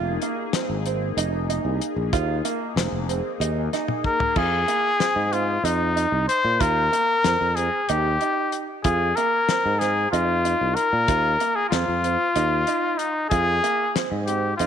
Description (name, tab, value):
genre	progressive instrumental, band music in an uneven meter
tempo	188 BPM (eighths)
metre	7/8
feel	straight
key	F minor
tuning	A4 = 436 Hz
part	phased analog pad	accompaniment	0.0-4.3 s	Bb3 to Ab4	-31 LUFS	left 11 dB	phaser, chorus
part	clear baby grand piano	arpeggios	0.0-14.7 s	Bb3 to F4	-29 LUFS	right 12 dB	none
part	sustaining fretless electric bass	bass	0.0-14.7 s	F1 to Bb2	-26 LUFS	right 1 dB	none
part	damped 70s drum kit	drums	0.2-14.7 s	crash cymbal, hi-hat, kick drum, snare drum, toms	-28 LUFS	left 4 dB	none
part	clear trumpet	melody	4.1-14.7 s	Eb4 to C5	-21 LUFS	left 2 dB	none
room	moderate echo chamber reverb, RT60 2.0 s, studio reverb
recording	1960s-style stereo with parts hard left and right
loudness	-20 LUFS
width	side -8 dB against mid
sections	0.0-4.4 A section; 4.4-14.7 B section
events	drum fill 3.9-4.4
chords	0.0 Fm7